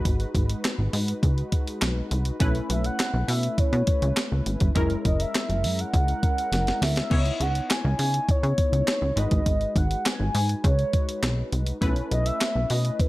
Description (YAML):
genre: early-eighties boogie funk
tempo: 102 BPM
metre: 4/4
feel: straight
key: unclear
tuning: A4 = 441 Hz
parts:
  - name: funky polysynth comp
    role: accompaniment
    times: 0.0-13.1 s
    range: G#3 to C#5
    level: -32 LUFS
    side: left 1 dB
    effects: chorus
  - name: plucky analog bass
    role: bass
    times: 0.1-13.1 s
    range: F#1 to C#3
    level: -25 LUFS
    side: equal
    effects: none
  - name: clean 12-bit digital drum machine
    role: drums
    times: 0.1-13.1 s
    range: crash cymbal, handclaps, hi-hat, kick drum, snare drum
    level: -25 LUFS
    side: equal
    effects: none
  - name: mellow horn-like synth lead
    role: melody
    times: 2.7-13.1 s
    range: B4 to G#5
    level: -28 LUFS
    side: equal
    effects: chorus
room: light reverb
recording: none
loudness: -22 LUFS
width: side -18 dB against mid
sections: 0.0-13.1 A section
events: drum fill 6.5-7.1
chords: 0.0 G#m7; 2.4 B9sus4; 4.8 F#9; 7.1 C#m9; 9.2 G#m7; 11.8 B9sus4